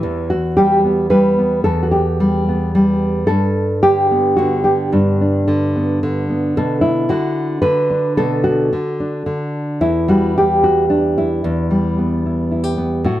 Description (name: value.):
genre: folk, solo fingerstyle acoustic guitar.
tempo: 111 BPM.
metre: 3/4.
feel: straight.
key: E minor.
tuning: A4 = 441 Hz.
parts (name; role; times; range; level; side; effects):
nylon-string guitar; solo; 0.0-13.2 s; E2 to B4; -14 LUFS; equal; none.
room: light reverb.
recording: none.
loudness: -14 LUFS.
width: side -13 dB against mid.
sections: 0.0-9.8 A section; 9.8-13.2 B section.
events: none.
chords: 0.0 Em; 3.3 Gadd9; 6.5 Bm7; 9.8 Emadd9.